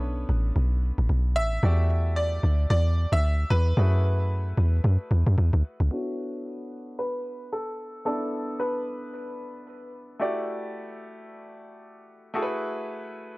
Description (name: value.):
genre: amapiano.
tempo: 112 BPM.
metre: 4/4.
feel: swing 58% on 16ths.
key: B minor.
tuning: A4 = 440 Hz.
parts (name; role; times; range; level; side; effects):
clear baby grand piano; accompaniment; 0.0-13.4 s; A3 to D5; -33 LUFS; equal; low-pass filter.
deep log drum bass; bass; 0.0-5.9 s; A1 to F#2; -22 LUFS; equal; none.
bright grand piano; melody; 1.4-9.9 s; F#4 to E5; -32 LUFS; equal; low-pass filter, analog delay.
room: little or no reverb.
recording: dry, gritty hardware recording, transformer saturation, cassette tape.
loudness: -23 LUFS.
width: side -23 dB against mid.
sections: 0.0-5.9 A section; 5.9-13.4 B section.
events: drop 0.0-5.9; filter sweep 5.9-13.4.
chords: 0.0 Bm11; 1.6 Em11; 3.8 F#m11; 5.9 Bm11; 10.2 Em11; 12.3 F#m11.